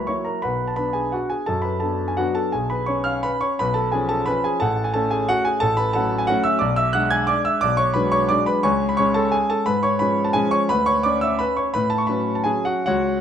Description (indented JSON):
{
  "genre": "classical, piano waltz",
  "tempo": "144-190 BPM",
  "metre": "3/4",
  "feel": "rubato",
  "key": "unclear",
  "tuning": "A4 = 440 Hz",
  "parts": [
    { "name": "warm grand piano", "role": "solo", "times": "0.0-13.2 s", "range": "A1 to G#6", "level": "-18 LUFS", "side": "equal", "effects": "none" }
  ],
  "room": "moderate recital hall reverb, RT60 1.2 s",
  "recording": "none",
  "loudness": "-18 LUFS",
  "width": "side -8 dB against mid",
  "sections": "0.0-13.2 A section",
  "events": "none",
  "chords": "0.4 Bm; 2.5 C#7/B; 4.6 F#m/A; 6.6 G#m7b5/B; 8.7 C#; 10.7 Dmaj7",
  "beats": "0.09 | 0.44 0.79 1.15 | 1.49 1.84 2.19 | 2.55 2.90 3.27 | 3.62 3.95 4.30 | 4.63 4.96 5.30 | 5.63 5.96 6.30 | 6.63 6.96 7.30 | 7.64 7.97 8.32 | 8.65 8.99 9.34 | 9.68 10.01 10.36 | 10.71 11.05 11.41 | 11.75 12.09 12.48 | 12.88"
}